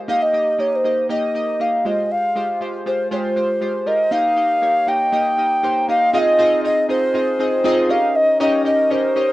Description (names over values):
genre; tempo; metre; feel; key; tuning
pop; 119 BPM; 4/4; straight; F minor; A4 = 441 Hz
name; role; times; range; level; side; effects
chorused retro synth keys; accompaniment; 0.0-9.3 s; Ab3 to Eb5; -22 LUFS; equal; cassette tape
alto ocarina; melody; 0.1-9.3 s; C5 to G5; -17 LUFS; equal; cassette tape
room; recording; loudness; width
wet booth ambience, RT60 0.2 s; home recording on cassette; -16 LUFS; side -16 dB against mid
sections
0.0-6.1 A section; 6.1-9.3 B section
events
none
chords
0.1 Eb; 1.9 Fmadd9; 4.1 Eb; 6.1 Fm7; 7.9 Eb7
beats
| 0.09 0.59 1.10 1.60 | 2.10 2.61 3.11 3.62 | 4.12 4.62 5.13 5.63 | 6.14 6.64 7.15 7.65 | 8.15 8.66 9.16